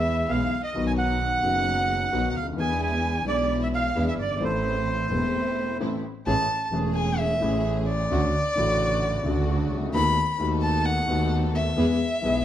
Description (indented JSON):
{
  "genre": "tango",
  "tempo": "131 BPM",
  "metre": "4/4",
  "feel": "rubato",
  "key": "A harmonic minor, A major from 6.3 s",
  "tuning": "A4 = 439 Hz",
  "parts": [
    { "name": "bandoneon", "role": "melody", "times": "0.0-5.8 s", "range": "C5 to G#5", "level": "-27 LUFS", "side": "right 4 dB", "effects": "plate reverb" },
    { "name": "warm violin", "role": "second line", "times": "0.0-12.4 s", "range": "C5 to B5", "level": "-28 LUFS", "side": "left 1 dB", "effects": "none" },
    { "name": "warm grand piano", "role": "accompaniment", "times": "0.0-12.4 s", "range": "E1 to A4", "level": "-28 LUFS", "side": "left 3 dB", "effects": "none" },
    { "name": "warm studio string section", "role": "stabs", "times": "0.0-12.4 s", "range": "C#3 to A4", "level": "-34 LUFS", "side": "right 3 dB", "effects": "none" },
    { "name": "warm double bass", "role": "bass", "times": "0.0-12.4 s", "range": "E1 to E2", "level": "-27 LUFS", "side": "right 1 dB", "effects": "none" }
  ],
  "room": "moderate large studio reverb, RT60 0.9 s",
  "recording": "none",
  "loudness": "-22 LUFS",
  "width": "side -11 dB against mid",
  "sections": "0.0-6.3 A section; 6.3-12.4 B section",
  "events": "break 5.3-6.3; violin solo 6.3-12.4",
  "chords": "0.0 E; 0.8 B; 2.6 E7; 4.4 Am; 6.3 Amaj7; 8.1 Dmaj7; 9.9 B7/D#; 11.8 E",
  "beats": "0.29 | 0.75 1.21 1.67 2.13 | 2.59 3.05 3.50 3.96 | 4.42 4.88 5.34 5.81 | 6.27 6.73 7.19 7.65 | 8.11 8.56 9.02 9.48 | 9.94 10.40 10.86 11.31 | 11.77 12.23"
}